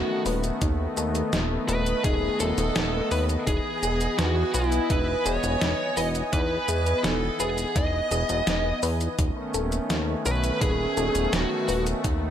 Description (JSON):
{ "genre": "synthwave", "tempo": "84 BPM", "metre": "4/4", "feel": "straight", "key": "E major", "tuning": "A4 = 440 Hz", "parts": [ { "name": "fuzz lead guitar", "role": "melody", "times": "0.0-11.8 s", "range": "E4 to D#5", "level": "-29 LUFS", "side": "equal", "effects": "distortion, ping-pong delay" }, { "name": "string machine, violins", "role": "second line", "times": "0.0-11.8 s", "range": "E4 to D#5", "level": "-33 LUFS", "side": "right 1 dB", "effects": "ensemble chorus, digital delay" }, { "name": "warm analog pad", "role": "sustained chords", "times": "0.0-12.3 s", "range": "D#3 to G#5", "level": "-30 LUFS", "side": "left 1 dB", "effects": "chorus, sidechain pumping" }, { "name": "soft round pluck", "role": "arpeggios", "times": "0.0-12.3 s", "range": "D#4 to B4", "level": "-34 LUFS", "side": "left 3 dB", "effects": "chorus, digital delay" }, { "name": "chorused synth bass", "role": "bass", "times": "0.0-12.3 s", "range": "D#1 to E2", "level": "-27 LUFS", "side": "equal", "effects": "tube saturation" }, { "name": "detuned 8-bit digital drum machine", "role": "drums", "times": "0.3-12.2 s", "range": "hi-hat, shaker, snare drum", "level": "-30 LUFS", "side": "right 1 dB", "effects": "gated reverb" }, { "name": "electronic kick drum", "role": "drums", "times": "0.6-12.2 s", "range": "none", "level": "-27 LUFS", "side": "equal", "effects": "none" } ], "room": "light reverb", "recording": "none", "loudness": "-22 LUFS", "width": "side -10 dB against mid", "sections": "0.0-12.3 A section", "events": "none", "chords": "0.0 B7/D#; 3.5 Emaj7; 9.2 B7/D#" }